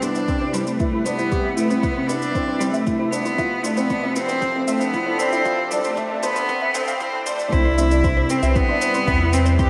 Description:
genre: piano and strings electronica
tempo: 116 BPM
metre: 4/4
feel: straight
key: C major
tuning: A4 = 442 Hz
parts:
  - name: bright cello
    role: melody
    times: 0.0-9.7 s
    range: G3 to G4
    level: -24 LUFS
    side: equal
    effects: diffuse ambient delay
  - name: lush unison pad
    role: sustained chords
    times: 0.0-9.7 s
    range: C3 to B4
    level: -30 LUFS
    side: equal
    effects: chorus
  - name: analog pluck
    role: arpeggios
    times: 0.0-9.7 s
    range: C5 to C6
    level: -34 LUFS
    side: equal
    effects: chorus, phaser, cassette tape, sidechain pumping, diffuse ambient delay
  - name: felt-muted upright piano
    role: riff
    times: 0.0-9.7 s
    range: B3 to G4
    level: -28 LUFS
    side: equal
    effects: lush chorus, diffuse ambient delay
  - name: shaker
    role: drums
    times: 0.0-9.7 s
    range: none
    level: -37 LUFS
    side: equal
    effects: none
  - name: electronic kick drum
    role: drums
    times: 0.3-9.7 s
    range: none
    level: -26 LUFS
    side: equal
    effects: none
  - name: warm sub bass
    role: bass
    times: 7.5-9.7 s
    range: C2 to E2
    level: -22 LUFS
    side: equal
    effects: sidechain pumping
room: wet lush hall reverb, RT60 2.0 s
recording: dreamy mix soaked in reverb, high-pass filter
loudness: -21 LUFS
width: mono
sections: 0.0-7.5 A section; 7.5-9.7 B section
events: build-up 0.0-7.5; filter sweep on synth arpeggio sound 0.0-7.5; filter sweep 0.0-7.5; drop 7.5-9.7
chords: 0.0 Cmaj7; 3.4 F6; 7.5 Cmaj7

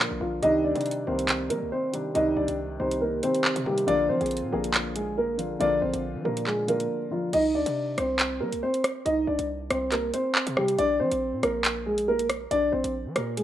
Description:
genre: hip hop, drill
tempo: 139 BPM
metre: 4/4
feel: half-time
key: C minor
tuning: A4 = 442 Hz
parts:
  - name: dark concert grand piano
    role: melody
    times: 0.0-13.4 s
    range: F3 to Eb5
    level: -25 LUFS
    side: equal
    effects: none
  - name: felt-muted upright piano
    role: accompaniment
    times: 0.0-7.4 s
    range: C3 to Ab4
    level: -31 LUFS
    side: left 1 dB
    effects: none
  - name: hard-hitting 808-style bass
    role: bass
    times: 0.0-13.4 s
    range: Bb1 to G3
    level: -36 LUFS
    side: right 1 dB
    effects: none
  - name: drill drum kit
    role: drums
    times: 0.4-13.4 s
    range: crash cymbal, handclaps, hi-hat, rim click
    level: -28 LUFS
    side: right 1 dB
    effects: vintage 12-bit sampler grit
room: moderate plate reverb, RT60 1.2 s, small room ambience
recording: rough home demo mix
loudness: -24 LUFS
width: side -12 dB against mid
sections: 0.0-7.3 A section; 7.3-13.4 B section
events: break 0.0-0.4, 6.9-7.3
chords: 0.4 Cmadd9; 3.9 Bb; 7.3 Cmadd9; 10.8 Bb

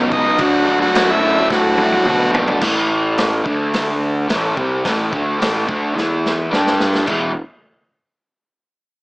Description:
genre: garage rock duo or trio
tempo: 108 BPM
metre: 4/4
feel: straight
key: unclear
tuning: A4 = 437 Hz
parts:
  - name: crunchy overdriven guitar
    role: riff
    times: 0.0-7.3 s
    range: A2 to G4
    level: -18 LUFS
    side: equal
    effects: none
  - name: fuzz picked electric bass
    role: bass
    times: 0.0-7.3 s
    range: E1 to B2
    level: -22 LUFS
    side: equal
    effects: overdrive, tube saturation
  - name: overdriven combo organ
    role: melody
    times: 0.1-2.3 s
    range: D#4 to F#4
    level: -16 LUFS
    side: equal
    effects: spring reverb
  - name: vintage drum kit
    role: drums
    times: 0.1-7.2 s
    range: crash cymbal, hi-hat, kick drum, snare drum, toms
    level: -21 LUFS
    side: equal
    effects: none
room: moderate club reverb, RT60 0.6 s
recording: small speaker sound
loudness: -14 LUFS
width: side -31 dB against mid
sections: 0.0-2.6 A section; 2.6-7.1 B section; 7.1-9.0 C section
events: drum fill 1.5-2.6, 6.0-7.1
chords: 0.4 D; 2.6 A5; 3.5 D5; 4.3 A5; 6.0 E5; 6.5 G5; 7.1 E

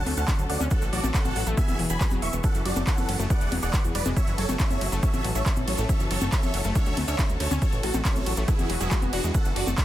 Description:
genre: uplifting trance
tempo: 139 BPM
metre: 4/4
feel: straight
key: F# minor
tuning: A4 = 440 Hz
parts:
  - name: big supersaw lead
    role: melody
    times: 0.0-9.8 s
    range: D4 to C#6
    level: -32 LUFS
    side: right 1 dB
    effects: phaser, sidechain pumping, dub echo
  - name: warm studio string section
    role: sustained chords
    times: 0.0-9.8 s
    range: D3 to A4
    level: -35 LUFS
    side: equal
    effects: vintage 12-bit sampler grit, sidechain pumping
  - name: fat analog bass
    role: bass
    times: 0.0-9.7 s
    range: E1 to E2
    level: -29 LUFS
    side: equal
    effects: sidechain pumping
  - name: wide unison pluck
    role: arpeggios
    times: 0.1-9.8 s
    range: E3 to F#4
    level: -34 LUFS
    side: left 3 dB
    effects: sidechain pumping, dub echo
  - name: big-room dance drum kit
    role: drums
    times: 0.1-9.8 s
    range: congas, handclaps, hi-hat, ride cymbal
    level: -31 LUFS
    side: left 1 dB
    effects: none
  - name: cabasa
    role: percussion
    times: 0.2-9.8 s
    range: none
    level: -40 LUFS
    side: right 5 dB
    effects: none
  - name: electronic kick drum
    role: drums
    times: 0.3-9.8 s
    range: none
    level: -24 LUFS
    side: equal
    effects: none
  - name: swell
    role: sound effects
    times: 8.6-9.3 s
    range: none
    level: -38 LUFS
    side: left 2 dB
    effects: none
room: digital ambience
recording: dense, heavily limited modern master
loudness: -22 LUFS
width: side -13 dB against mid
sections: 0.0-9.8 A section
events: swell 8.6-9.3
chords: 0.0 Dmaj7; 0.7 A6; 1.6 Eadd9; 2.4 F#m7; 3.3 Eadd9; 4.2 F#m7; 5.0 A6; 5.9 F#m7; 6.8 Dmaj7; 7.6 A6; 8.5 Eadd9; 9.3 F#m7

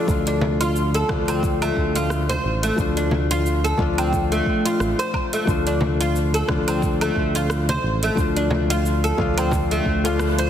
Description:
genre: organic downtempo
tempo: 89 BPM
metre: 4/4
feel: swing 57% on 16ths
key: D minor pentatonic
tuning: A4 = 435 Hz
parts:
  - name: felt-muted upright piano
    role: accompaniment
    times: 0.0-10.5 s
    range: F3 to F4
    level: -25 LUFS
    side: left 5 dB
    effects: sidechain pumping, ping-pong delay
  - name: oud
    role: arpeggios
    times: 0.0-10.5 s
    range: A3 to C5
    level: -23 LUFS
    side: right 1 dB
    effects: ping-pong delay
  - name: smooth synth bass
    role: bass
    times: 0.1-10.5 s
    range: A1 to D2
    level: -23 LUFS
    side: right 1 dB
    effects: sidechain pumping
  - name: deep house drum kit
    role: drums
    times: 0.1-10.5 s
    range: cabasa, hi-hat, rim click, woodblock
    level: -30 LUFS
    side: right 2 dB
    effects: studio reverb
  - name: electronic kick drum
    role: drums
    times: 0.1-10.0 s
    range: none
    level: -25 LUFS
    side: right 1 dB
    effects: studio reverb
  - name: frame drum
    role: percussion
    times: 0.4-9.7 s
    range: none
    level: -30 LUFS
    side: equal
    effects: none
room: moderate concert hall reverb, RT60 2.1 s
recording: heavily compressed radio sound, multiband compression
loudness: -18 LUFS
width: side -9 dB against mid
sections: 0.0-10.5 A section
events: band accent 10.2-10.5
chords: 0.0 Dm

